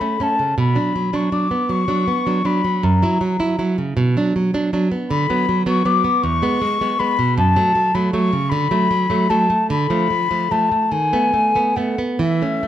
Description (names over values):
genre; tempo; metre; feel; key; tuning
romantic duo for flute and classical guitar; 45-54 BPM (dotted quarters); 6/8; rubato; unclear; A4 = 440 Hz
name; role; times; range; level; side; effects
mellow silver concert flute; melody; 0.0-12.7 s; E5 to D6; -19 LUFS; left 4 dB; none
nylon-string guitar; accompaniment; 0.0-12.7 s; E2 to E4; -18 LUFS; right 2 dB; none
room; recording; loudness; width
moderate recital hall reverb, RT60 1.5 s; none; -16 LUFS; side -11 dB against mid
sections
0.0-12.7 A section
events
none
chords
0.0 F#m (rootless); 0.6 Bm; 2.8 F#7; 4.0 Bm; 5.1 Bm/D; 6.2 E; 7.4 F#m; 8.5 Bm7/D; 9.7 Bm7b5/D; 10.9 B7/D#